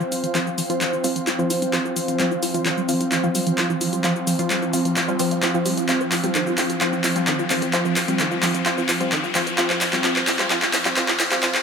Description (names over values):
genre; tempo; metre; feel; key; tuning
driving peak-time techno; 130 BPM; 4/4; straight; unclear; A4 = 439 Hz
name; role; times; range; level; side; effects
resonant blip pluck; riff; 0.0-11.6 s; Eb3 to F4; -26 LUFS; right 2 dB; phaser, overdrive, tape echo
swarming drone; drone; 0.1-11.6 s; F3 to C4; -28 LUFS; right 1 dB; built-in reverb
punchy analog drum machine; drums; 0.0-11.6 s; handclaps, hi-hat, shaker; -22 LUFS; left 1 dB; overdrive, dub echo
riser; sound effects; 2.6-11.6 s; none; -31 LUFS; left 3 dB; none
airy breathy pad; texture; 0.0-11.6 s; C4 to F5; -28 LUFS; equal; chorus
filtered dub chord stab; stabs; 0.3-11.5 s; F3 to F4; -27 LUFS; left 1 dB; chorus, analog delay
room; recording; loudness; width
wet spring reverb, RT60 1.7 s; echo-heavy mix, high-pass filter; -18 LUFS; side -6 dB against mid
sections
0.0-11.6 A section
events
build-up 0.0-11.6; drum fill 0.0-11.6; filter sweep on synth arpeggio sound 0.0-11.6; filter sweep 0.0-11.6; riser 2.6-11.6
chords
0.0 F5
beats
| 0.35 0.81 1.27 1.73 | 2.20 2.66 3.12 3.58 | 4.04 4.50 4.96 5.43 | 5.89 6.35 6.81 7.27 | 7.73 8.20 8.66 9.12 | 9.58 10.04 10.50 10.96 | 11.43